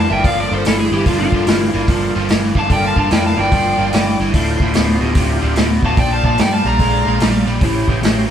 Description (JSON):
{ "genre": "blues rock power trio and southern rock", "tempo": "146 BPM", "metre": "4/4", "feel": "swing 64% on 8ths", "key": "unclear", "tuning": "A4 = 440 Hz", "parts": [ { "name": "overdriven slide guitar", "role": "melody", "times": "0.0-7.5 s", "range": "F4 to Bb5", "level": "-19 LUFS", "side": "left 1 dB", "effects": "none" }, { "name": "dark smooth lead guitar", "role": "second line", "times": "0.0-7.5 s", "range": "D4 to F5", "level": "-26 LUFS", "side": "right 4 dB", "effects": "overdrive" }, { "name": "overdriven tonewheel organ", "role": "sustained chords", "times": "0.0-8.3 s", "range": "A3 to C5", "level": "-26 LUFS", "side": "right 3 dB", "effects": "slow rotary speaker, chorus vibrato" }, { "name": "overdriven electric guitar", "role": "riff", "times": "0.0-8.3 s", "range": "D2 to G#3", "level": "-19 LUFS", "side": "equal", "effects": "none" }, { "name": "vintage muted picked electric bass", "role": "bass", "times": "0.0-8.2 s", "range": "D1 to G2", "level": "-20 LUFS", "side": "equal", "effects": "none" }, { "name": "vintage drum kit", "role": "drums", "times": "0.2-8.2 s", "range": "hi-hat, kick drum, snare drum", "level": "-17 LUFS", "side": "equal", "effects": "none" } ], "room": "moderate studio reverb, RT60 0.7 s", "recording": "band playing live in one room", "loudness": "-13 LUFS", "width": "side -9 dB against mid", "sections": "0.0-8.3 A section", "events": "none", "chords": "0.0 Gm9; 4.3 Dm9; 6.0 Bbmaj7; 7.6 A7#9" }